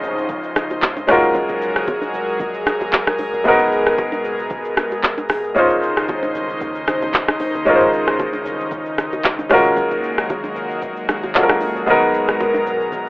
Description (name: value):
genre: amapiano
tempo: 114 BPM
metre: 4/4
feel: swing 55% on 16ths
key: Db major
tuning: A4 = 442 Hz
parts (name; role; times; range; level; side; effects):
- clear baby grand piano; accompaniment; 0.0-13.1 s; Ab3 to Eb5; -18 LUFS; equal; none
- airy breathy pad; sustained chords; 0.0-13.1 s; Cb3 to C5; -22 LUFS; equal; chorus, sidechain pumping
- deep log drum bass; bass; 0.0-12.9 s; F1 to Eb2; -38 LUFS; equal; none
- afro-pop drum kit; drums; 0.0-13.1 s; handclaps, hi-hat, kick drum, rim click, shaker; -20 LUFS; equal; none
- downlifter; sound effects; 0.0-1.4 s; none; -35 LUFS; equal; none
- congas and bongos; percussion; 0.3-13.1 s; none; -26 LUFS; right 1 dB; none
room: light reverb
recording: rough home demo mix, telephone sound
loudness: -16 LUFS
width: side -24 dB against mid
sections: 0.0-13.1 A section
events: kick muted 11.9-13.1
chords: 0.0 Dbmaj9; 1.1 Gbmaj9; 3.5 Abm9; 5.6 Dbmaj9; 9.5 Gbmaj9; 11.9 Abm9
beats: 0.30 0.82 | 1.35 1.88 2.40 2.93 | 3.46 3.98 4.51 5.03 | 5.56 6.09 6.61 7.14 | 7.67 8.19 8.72 9.24 | 9.77 10.30 10.82 11.35 | 11.88 12.40 12.93